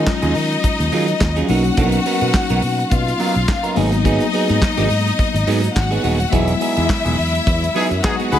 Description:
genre	disco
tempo	106 BPM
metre	4/4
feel	swing 56% on 16ths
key	unclear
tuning	A4 = 441 Hz
part	clear studio string section	second line	0.0-8.4 s	Eb4 to F#5	-21 LUFS	left 4 dB	none
part	clean electric guitar	accompaniment	0.0-8.4 s	Gb3 to A#4	-23 LUFS	right 7 dB	phaser
part	mellow tine electric piano	accompaniment	0.0-8.4 s	Gb3 to F4	-23 LUFS	left 4 dB	medium stereo tremolo
part	fingered electric bass	bass	0.0-8.4 s	Eb1 to Eb3	-20 LUFS	equal	none
part	warm soul drum kit	drums	0.1-8.4 s	handclaps, hi-hat, kick drum, snare drum	-22 LUFS	equal	none
part	mellow horn section	stabs	7.8-8.4 s	G#3 to B4	-20 LUFS	left 3 dB	slapback echo
room	light reverb, small room ambience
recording	none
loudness	-15 LUFS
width	side -10 dB against mid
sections	0.0-8.4 A section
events	band accent 6.3-8.4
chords	0.0 Ebm11; 1.5 Bmaj7; 3.8 Abm7; 6.3 Emaj9

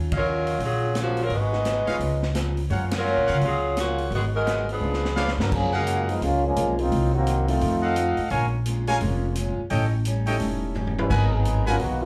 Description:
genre	jazz, big band swing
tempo	171 BPM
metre	4/4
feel	swing 62% on 8ths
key	F# major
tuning	A4 = 442 Hz
part	picked steel-string acoustic guitar	accompaniment	0.0-12.0 s	F#2 to A#4	-37 LUFS	equal	plate reverb, slapback echo
part	upright bass	bass	0.0-12.1 s	E1 to C#3	-28 LUFS	equal	none
part	bright trumpet section	stabs	0.1-11.8 s	E#4 to G#5	-30 LUFS	equal	plate reverb, slapback echo
part	swinging big-band drum kit	drums	0.1-11.9 s	crash cymbal, hi-hat, kick drum, ride cymbal, snare drum, toms	-35 LUFS	equal	none
part	clear saxophone section	melody	0.2-5.4 s	C#3 to B4	-27 LUFS	equal	plate reverb, slapback echo
part	clear baby grand piano	accompaniment	1.5-5.4, 7.5-11.8 s	Eb3 to A#4	-35 LUFS	equal	plate reverb
part	clear trombone section	second line	5.4-8.2, 11.0-12.1 s	C#3 to B4	-27 LUFS	equal	plate reverb, slapback echo
room	moderate club reverb, RT60 0.6 s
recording	live gig heard through the venue's PA, club ambience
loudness	-24 LUFS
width	mono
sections	0.0-5.5 A section; 5.5-12.1 B section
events	band accent 0.1, 2.9; drum fill 4.8-5.5, 10.8-11.1; trombone section solo 5.5-12.1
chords	0.0 D#m9; 1.3 G#m7; 2.0 C#9; 2.7 F#maj7; 4.1 G#m7; 4.8 C#7b9; 5.5 F#maj9; 6.9 Cm7b5; 7.6 F7b9; 8.3 A#m7; 9.7 A7#11; 11.1 G#m9

